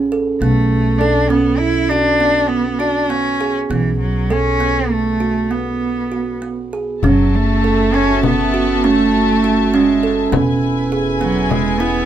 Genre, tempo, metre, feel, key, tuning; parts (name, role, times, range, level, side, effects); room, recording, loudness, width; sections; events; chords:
contemporary instrumental, chamber music in an uneven meter; 201 BPM (eighths); 11/8; straight; B dorian; A4 = 440 Hz
kalimba; arpeggios; 0.0-12.0 s; B3 to A4; -18 LUFS; right 4 dB
upright bass; bass; 0.0-12.1 s; E1 to B1; -21 LUFS; left 1 dB
rich cello; melody; 0.4-12.1 s; E3 to E4; -17 LUFS; right 2 dB
warm studio string section; sustained chords; 7.0-12.1 s; E4 to A5; -22 LUFS; left 4 dB
frame drum; percussion; 7.0-11.8 s; -21 LUFS; left 7 dB
little or no reverb; -14 LUFS; side -10 dB against mid
0.0-7.0 A section; 7.0-12.1 B section
0.4 Bmadd9; 3.7 B5; 7.0 F#m7; 10.3 E